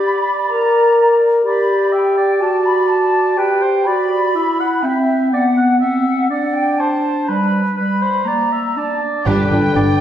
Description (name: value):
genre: cinematic, heroic adventure film score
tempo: 123 BPM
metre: 4/4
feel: straight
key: G major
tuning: A4 = 440 Hz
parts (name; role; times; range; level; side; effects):
- flute section; second line; 0.0-9.0 s; E5 to B5; -19 LUFS; equal; none
- mellow clarinet; second line; 0.0-9.0 s; G3 to Bb4; -16 LUFS; equal; none
- warm oboe; second line; 0.0-10.0 s; B4 to G5; -22 LUFS; right 1 dB; none
- warm symphonic violin section; melody; 9.3-10.0 s; G5; -23 LUFS; left 4 dB; none
- warm symphonic violin section; second line; 9.3-9.9 s; B3 to G4; -24 LUFS; equal; none
- rich symphonic viola section; accompaniment; 9.3-9.8 s; D4; -20 LUFS; equal; none
- warm French horn section; sustained chords; 9.3-10.0 s; D3 to D4; -19 LUFS; left 3 dB; none
- rich studio cello section; bass; 9.3-9.8 s; G2; -18 LUFS; right 2 dB; none
- rich symphonic double bass section; bass; 9.3-9.8 s; G1; -20 LUFS; right 2 dB; none
room: wet recital hall reverb, RT60 1.6 s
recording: heard from further back in the room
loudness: -13 LUFS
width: side -10 dB against mid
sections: 0.0-9.3 A section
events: build-up 0.0-9.3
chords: 0.5 Bb; 1.4 G; 2.4 D/F#; 3.4 G; 4.3 Emadd9; 5.3 B5; 6.3 D; 7.3 G; 8.3 Bb; 8.8 D5; 9.3 G